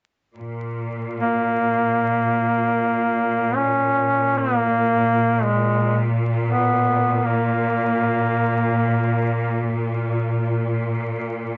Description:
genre	caucasian folk, Caucasian lament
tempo	free time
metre	none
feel	none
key	Bb phrygian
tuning	A4 = 438 Hz
part	clear studio string section	drone	0.4-11.6 s	Bb2	-25 LUFS	equal	none
part	warm duduk	melody	1.2-9.9 s	Ab3 to Db4	-22 LUFS	equal	none
room	wet studio reverb, RT60 0.5 s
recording	vinyl crackle, nothing above 7.8 kHz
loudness	-21 LUFS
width	mono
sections	0.4-11.6 A section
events	none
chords	none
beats	free time

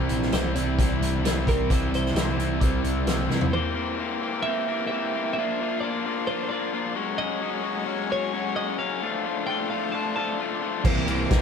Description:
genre	indie rock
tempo	131 BPM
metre	4/4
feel	straight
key	unclear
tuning	A4 = 439 Hz
part	phased analog pad	sustained chords	0.0-11.4 s	C4 to D6	-38 LUFS	right 1 dB	phaser, chorus
part	crunchy overdriven guitar	riff	0.0-11.4 s	E3 to G4	-27 LUFS	left 5 dB	none
part	sludgy distorted guitar	riff	0.0-3.5, 10.8-11.4 s	C3 to E4	-30 LUFS	right 8 dB	overdrive
part	growling picked electric bass	bass	0.0-3.5, 10.8-11.4 s	Bb1 to C2	-28 LUFS	equal	overdrive
part	vintage drum kit	drums	0.1-3.5, 10.8-11.4 s	crash cymbal, hi-hat, kick drum, ride cymbal, snare drum, toms	-25 LUFS	equal	none
part	twelve-string electric guitar	melody	0.3-11.4 s	Bb4 to A5	-31 LUFS	right 2 dB	warbly pitch drift
room	moderate small room ambience, RT60 0.5 s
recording	band playing live in one room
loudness	-23 LUFS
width	side -6 dB against mid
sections	0.0-3.5 A section; 3.5-11.4 B section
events	drum fill 3.3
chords	0.0 C; 3.5 C7; 5.4 Bbadd9; 7.0 Gbsus2; 9.0 Dm; 10.9 C7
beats	0.32 0.78 1.24 | 1.70 2.16 2.62 3.07 | 3.53 3.99 4.45 4.90 | 5.36 5.82 6.28 6.73 | 7.19 7.65 8.11 8.56 | 9.02 9.48 9.94 10.39 | 10.85 11.31

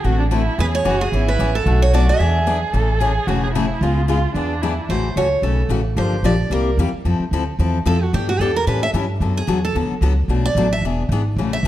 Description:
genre	acoustic string swing (jazz manouche)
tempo	222 BPM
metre	4/4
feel	swing 56% on 8ths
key	A major from 4.9 s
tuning	A4 = 440 Hz
part	warm violin	second line	0.0-4.9 s	D4 to A4	-24 LUFS	right 3 dB	tape echo
part	picked steel-string acoustic guitar	accompaniment	0.0-11.7 s	B2 to A4	-22 LUFS	left 4 dB	none
part	upright bass	bass	0.0-11.7 s	E1 to A2	-19 LUFS	equal	none
part	picked steel-string acoustic guitar	melody	0.6-2.6, 4.9-11.7 s	F#4 to E5	-22 LUFS	right 3 dB	none
room	light reverb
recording	dark, warm production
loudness	-16 LUFS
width	side -13 dB against mid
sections	0.0-4.9 A section; 4.9-11.7 B section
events	steel-string acoustic guitar solo 4.9-11.7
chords	0.0 D9; 0.6 E6; 1.7 Bm7; 2.2 E7; 2.7 Amaj7; 3.8 C#7; 4.4 E7; 4.9 A6; 6.0 Gm7; 6.5 C7; 7.0 Fmaj7; 8.1 Em7; 8.7 A7; 9.2 D69; 10.3 Bm7; 10.8 E7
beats	0.04 0.31 | 0.58 0.85 1.12 1.39 | 1.66 1.93 2.20 2.47 | 2.74 3.01 3.28 3.54 | 3.81 4.08 4.35 4.62 | 4.89 5.16 5.43 5.70 | 5.97 6.24 6.51 6.78 | 7.05 7.32 7.59 7.86 | 8.12 8.39 8.67 8.94 | 9.21 9.48 9.75 10.02 | 10.29 10.56 10.83 11.10 | 11.37 11.64

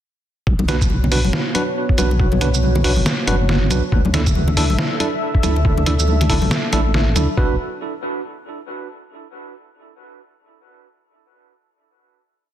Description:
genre	deep dubstep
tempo	139 BPM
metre	4/4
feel	swing 60% on 16ths, half-time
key	B minor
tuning	A4 = 440 Hz
part	dark analog pad	sustained chords	1.0-7.6 s	B3 to E5	-26 LUFS	equal	chorus, vintage 12-bit sampler grit
part	deep soft wobble bass	bass	0.5-7.6 s	F#1 to D2	-18 LUFS	equal	chorus
part	electronic kick drum	drums	0.5-7.5 s	none	-18 LUFS	equal	small room reverb
part	congas	percussion	0.6-7.3 s	none	-25 LUFS	left 3 dB	dub echo
part	bright tine electric piano	stabs	0.7-7.5 s	D4 to B4	-24 LUFS	right 3 dB	medium stereo tremolo, dub echo
part	trip hop sampler-style drum kit	drums	0.7-7.3 s	hi-hat, shaker, snare drum	-22 LUFS	equal	small room reverb
room	light reverb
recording	dense, heavily limited modern master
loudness	-15 LUFS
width	side -11 dB against mid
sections	0.5-7.4 drop; 7.4-9.1 final chord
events	drop 0.5-7.4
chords	0.5 Bm; 3.9 Dsus2; 7.4 B5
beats	| 0.47 0.90 1.33 1.76 | 2.19 2.63 3.06 3.49 | 3.92 4.35 4.79 5.22 | 5.65 6.08 6.51 6.94 | 7.38

